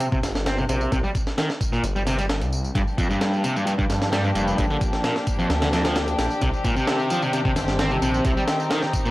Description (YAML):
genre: breakbeat, breaks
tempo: 131 BPM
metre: 4/4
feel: straight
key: C minor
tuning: A4 = 440 Hz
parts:
  - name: distorted electric guitar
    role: riff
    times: 0.0-9.1 s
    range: F2 to C4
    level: -25 LUFS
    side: equal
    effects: distortion, tube saturation, low-pass filter, analog delay
  - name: breakbeat sampler-style drum kit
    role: drums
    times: 0.0-9.0 s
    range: hi-hat, kick drum, snare drum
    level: -25 LUFS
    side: equal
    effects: none
  - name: tambourine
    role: drums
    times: 0.0-9.1 s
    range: none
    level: -39 LUFS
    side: equal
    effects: none
  - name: phased detuned saw bass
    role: bass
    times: 0.2-8.3 s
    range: F1 to G2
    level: -26 LUFS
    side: equal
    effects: phaser
  - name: warm studio string section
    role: sustained chords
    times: 2.8-9.1 s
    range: Eb3 to G4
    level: -26 LUFS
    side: left 1 dB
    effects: vintage 12-bit sampler grit, sidechain pumping
room: light reverb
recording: dry, gritty hardware recording, transformer saturation, vinyl crackle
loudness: -20 LUFS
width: side -18 dB against mid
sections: 0.0-9.1 A section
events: none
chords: 0.0 C5; 2.8 Gm7; 6.4 Cmadd9